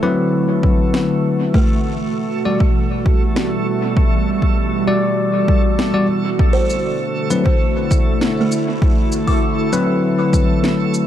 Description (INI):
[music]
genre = ambient dub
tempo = 99 BPM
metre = 4/4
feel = straight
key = unclear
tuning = A4 = 441 Hz
[part]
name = warbly tape-like pad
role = sustained chords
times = 0.0-11.1 s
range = B2 to F#4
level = -21 LUFS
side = right 1 dB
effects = chorus, built-in reverb, phaser
[part]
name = buzzing kalimba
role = arpeggios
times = 0.0-11.1 s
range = A3 to D6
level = -25 LUFS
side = right 3 dB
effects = tape echo
[part]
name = bell-like tine electric piano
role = stabs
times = 0.0-11.1 s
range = F#3 to D5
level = -19 LUFS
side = left 3 dB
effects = dub echo
[part]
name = backwards swelling texture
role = texture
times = 0.0-11.1 s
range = A3 to A4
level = -26 LUFS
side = right 2 dB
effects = built-in reverb
[part]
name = electronic kick drum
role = drums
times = 0.6-10.5 s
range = none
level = -16 LUFS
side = equal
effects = overdrive, small room ambience
[part]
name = electronic snare drum and shaker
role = drums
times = 0.9-11.1 s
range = none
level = -24 LUFS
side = left 1 dB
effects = overdrive, small room ambience, dub echo
[sound]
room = light reverb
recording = echo-heavy mix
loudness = -14 LUFS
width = side -11 dB against mid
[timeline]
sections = 0.0-11.1 A section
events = none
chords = 0.0 D13; 1.5 Em9; 6.4 D13